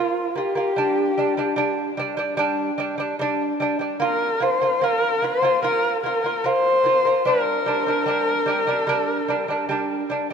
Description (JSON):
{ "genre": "mongolian traditional, Mongolian folk", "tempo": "74 BPM", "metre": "4/4", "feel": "straight", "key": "unclear", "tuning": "A4 = 440 Hz", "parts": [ { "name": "dark horsehead fiddle", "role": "melody", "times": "0.0-10.1 s", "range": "F4 to C5", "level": "-21 LUFS", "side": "left 1 dB", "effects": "none" }, { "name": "lute", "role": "arpeggios", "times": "0.0-10.3 s", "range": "G3 to F4", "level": "-23 LUFS", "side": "right 2 dB", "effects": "none" } ], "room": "moderate huge ambient reverb, RT60 5.9 s", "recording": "minimal, uncompressed stereo recording", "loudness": "-19 LUFS", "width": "side -6 dB against mid", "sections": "0.0-10.3 A section", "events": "none", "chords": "0.0 Bb5; 0.8 G5; 4.0 Bb5; 7.3 G5", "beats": "| 0.75 1.56 2.38 3.19 | 4.00 4.81 5.62 6.44 | 7.25 8.06 8.88 9.69" }